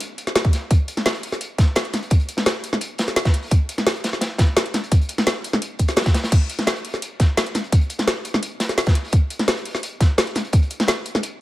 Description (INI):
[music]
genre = drum and bass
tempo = 171 BPM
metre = 4/4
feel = straight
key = none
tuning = none
[part]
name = crunchy breakbeat drum kit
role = drums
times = 0.0-11.3 s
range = hi-hat, snare drum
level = -27 LUFS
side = equal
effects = high-pass filter on hats, high-pass filter on snare, high-pass filter on room
[part]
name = drum and bass drum kit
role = drums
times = 0.0-11.3 s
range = crash cymbal, hi-hat, snare drum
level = -21 LUFS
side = equal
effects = none
[part]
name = electronic kick drum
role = drums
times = 0.4-10.6 s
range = none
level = -16 LUFS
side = equal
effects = none
[sound]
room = little or no reverb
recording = none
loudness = -18 LUFS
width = side -16 dB against mid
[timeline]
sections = 0.0-11.4 A section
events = none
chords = none